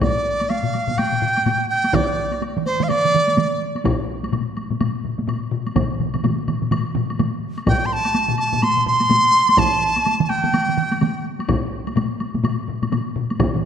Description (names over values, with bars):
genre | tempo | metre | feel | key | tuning
japanese traditional, taiko drum ensemble | 126 BPM | 4/4 | swing 60% on 16ths | G suspended pentatonic | A4 = 435 Hz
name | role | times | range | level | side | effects
bright dizi | melody | 0.0-3.6, 7.7-11.3 s | C5 to C6 | -18 LUFS | right 1 dB | none
solo taiko drums | percussion | 0.0-13.5 s | none | -23 LUFS | left 1 dB | none
taiko ensemble | percussion | 0.0-13.5 s | none | -26 LUFS | equal | none
taiko ensemble | percussion | 0.0-13.6 s | none | -25 LUFS | left 6 dB | none
woodblock | percussion | 0.0-13.5 s | none | -34 LUFS | left 2 dB | none
taiko ensemble | percussion | 1.9-13.6 s | none | -23 LUFS | right 6 dB | none
room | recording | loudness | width
wet scoring stage reverb, RT60 1.7 s | none | -18 LUFS | side -8 dB against mid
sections
0.0-13.7 A section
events
none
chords
none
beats
| 0.02 0.50 0.98 1.46 | 1.93 2.41 2.89 3.37 | 3.85 4.33 4.80 5.28 | 5.76 6.24 6.72 7.20 | 7.67 8.15 8.63 9.11 | 9.59 10.06 10.54 11.02 | 11.49 11.97 12.45 12.93 | 13.40